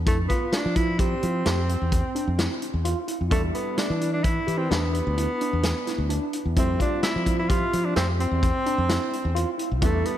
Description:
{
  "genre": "progressive instrumental, band music in an uneven meter",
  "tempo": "129 BPM",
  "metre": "7/4",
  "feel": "straight",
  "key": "unclear",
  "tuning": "A4 = 439 Hz",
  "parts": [
    { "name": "modern bright fingered electric bass", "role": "bass", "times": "0.0-10.0 s", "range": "B1 to F3", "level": "-25 LUFS", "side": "equal", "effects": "none" },
    { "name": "warm tenor saxophone", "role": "melody", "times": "0.1-10.2 s", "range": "A3 to F4", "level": "-28 LUFS", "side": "equal", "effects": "analog delay" },
    { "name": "tine electric piano", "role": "arpeggios", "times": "0.1-10.1 s", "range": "C4 to G4", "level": "-31 LUFS", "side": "right 1 dB", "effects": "overdrive, medium stereo tremolo, analog delay" },
    { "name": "vintage drum kit", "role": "drums", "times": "0.1-10.2 s", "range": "hi-hat, kick drum, snare drum", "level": "-27 LUFS", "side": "equal", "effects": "none" },
    { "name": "clear baby grand piano", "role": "accompaniment", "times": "3.3-10.2 s", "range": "G3 to E5", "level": "-35 LUFS", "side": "right 1 dB", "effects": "analog chorus" }
  ],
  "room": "moderate lush hall reverb, RT60 1.7 s, studio ambience",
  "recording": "dreamy mix soaked in reverb",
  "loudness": "-22 LUFS",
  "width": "side -11 dB against mid",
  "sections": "0.0-10.2 A section",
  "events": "none",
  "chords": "0.1 F5; 3.3 Em7; 6.6 Fmaj9",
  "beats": "| 0.07 0.53 0.99 1.46 1.92 2.38 2.85 | 3.31 3.78 4.24 4.71 5.17 5.63 6.10 | 6.56 7.03 7.49 7.96 8.42 8.89 9.35 | 9.82"
}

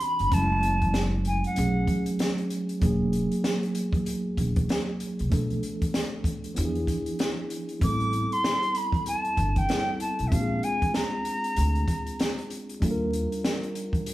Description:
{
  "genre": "hip hop, jazz-hop",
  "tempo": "96 BPM",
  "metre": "4/4",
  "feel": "swing 60% on 16ths",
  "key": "unclear",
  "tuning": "A4 = 435 Hz",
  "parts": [
    { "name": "silver concert flute", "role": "melody", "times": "0.0-2.0, 7.8-12.5 s", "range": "E5 to D6", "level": "-28 LUFS", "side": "equal", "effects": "none" },
    { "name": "mellow tine electric piano", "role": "accompaniment", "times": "0.0-14.1 s", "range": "E3 to Bb4", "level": "-29 LUFS", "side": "right 1 dB", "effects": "medium stereo tremolo" },
    { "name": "open jazz drum kit", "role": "drums", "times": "0.0-14.1 s", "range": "hi-hat, kick drum, snare drum", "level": "-28 LUFS", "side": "equal", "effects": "none" },
    { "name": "upright bass", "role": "bass", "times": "0.2-13.2 s", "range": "E1 to E2", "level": "-28 LUFS", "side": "equal", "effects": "none" }
  ],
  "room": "moderate large studio reverb, RT60 1.4 s",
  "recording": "band playing live in one room, vinyl crackle",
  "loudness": "-24 LUFS",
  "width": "side -16 dB against mid",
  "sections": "0.0-14.1 A section",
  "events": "none",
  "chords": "0.3 F#m9; 1.6 B13; 2.8 Emaj9#11; 5.3 Bm7b5; 6.6 E7b9; 7.8 Am7; 10.3 Bb9; 12.8 Ebmaj7",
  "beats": "| 0.32 0.94 1.57 2.19 | 2.82 3.44 4.07 4.69 | 5.32 5.94 6.57 7.19 | 7.82 8.44 9.07 9.69 | 10.32 10.94 11.57 12.19 | 12.82 13.44 14.07"
}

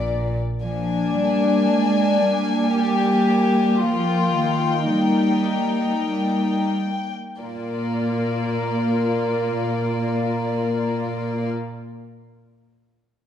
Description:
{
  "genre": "classical, slow romantic movement for string orchestra",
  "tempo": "42-61 BPM",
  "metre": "3/4",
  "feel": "rubato",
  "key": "Bb major",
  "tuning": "A4 = 438 Hz",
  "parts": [
    { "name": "warm chamber violin section", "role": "melody", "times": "0.0-11.5 s", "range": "D5 to Ab5", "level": "-29 LUFS", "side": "left 5 dB", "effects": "none" },
    { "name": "warm symphonic violin section", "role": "second line", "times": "0.0-11.5 s", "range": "Bb3 to G4", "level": "-24 LUFS", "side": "left 4 dB", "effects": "none" },
    { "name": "warm studio cello section", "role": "bass", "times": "0.0-11.5 s", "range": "Bb2 to Ab3", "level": "-25 LUFS", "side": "right 2 dB", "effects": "none" },
    { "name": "dark symphonic viola section", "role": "accompaniment", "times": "0.6-11.5 s", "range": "Bb3 to F4", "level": "-24 LUFS", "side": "right 1 dB", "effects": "none" }
  ],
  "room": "wet recital hall reverb, RT60 1.8 s",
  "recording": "dark, warm production",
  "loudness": "-19 LUFS",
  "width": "side -9 dB against mid",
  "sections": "0.6-7.4 A section; 7.4-10.9 B section",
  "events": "slowing down 0.0-7.4",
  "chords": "0.0 Bb; 0.6 Bb7/F; 3.8 Eb; 7.4 Bb",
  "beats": "| 0.62 1.66 2.76 | 3.81 4.87 6.07 | 7.41 8.60 9.77"
}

